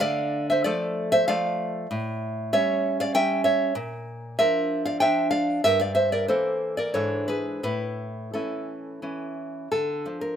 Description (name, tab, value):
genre	romantic piece for solo classical guitar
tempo	85-99 BPM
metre	3/4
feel	rubato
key	D minor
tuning	A4 = 440 Hz
part	nylon-string guitar	solo	0.0-10.4 s	G2 to G5	-23 LUFS	equal	slapback echo
room	little or no reverb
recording	recorded outdoors, with no room sound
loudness	-22 LUFS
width	side -8 dB against mid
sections	0.0-9.7 A section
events	none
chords	0.0 Dm; 1.9 A7; 3.8 Bb; 5.6 Edim/G; 6.9 E7/G#; 7.6 A; 9.7 Dm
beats	| 0.01 0.66 1.28 | 1.90 2.52 3.14 | 3.75 4.38 5.00 | 5.63 6.28 6.94 | 7.63 8.33 9.02 | 9.71